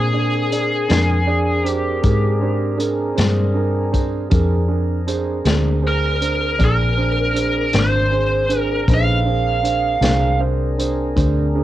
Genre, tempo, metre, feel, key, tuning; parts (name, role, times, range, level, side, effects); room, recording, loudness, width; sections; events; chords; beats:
slow blues; 53 BPM (dotted quarters); 12/8; straight; Bb mixolydian; A4 = 438 Hz
biting lead guitar; melody; 0.0-10.4 s; Ab4 to F5; -20 LUFS; equal; overdrive, cassette tape
warm upright piano; accompaniment; 0.0-11.6 s; D4 to D5; -24 LUFS; right 6 dB; cassette tape
tonewheel organ; sustained chords; 0.0-11.6 s; C4 to Cb5; -27 LUFS; left 1 dB; slow rotary speaker, cassette tape
vintage muted fingered electric bass; bass; 0.0-11.6 s; Ab1 to Bb2; -20 LUFS; left 1 dB
crunchy breakbeat drum kit; drums; 0.5-11.3 s; hi-hat, kick drum, snare drum; -22 LUFS; left 1 dB; cassette tape
clean electric guitar; accompaniment; 0.9-10.3 s; Bb2 to D4; -25 LUFS; left 7 dB; tremolo, cassette tape
light reverb; home recording on cassette; -16 LUFS; side -13 dB against mid
0.0-11.6 A section
0.0 Bb9
0.91 2.05 3.19 | 4.33 5.47 6.61 7.75 | 8.89 10.03 11.17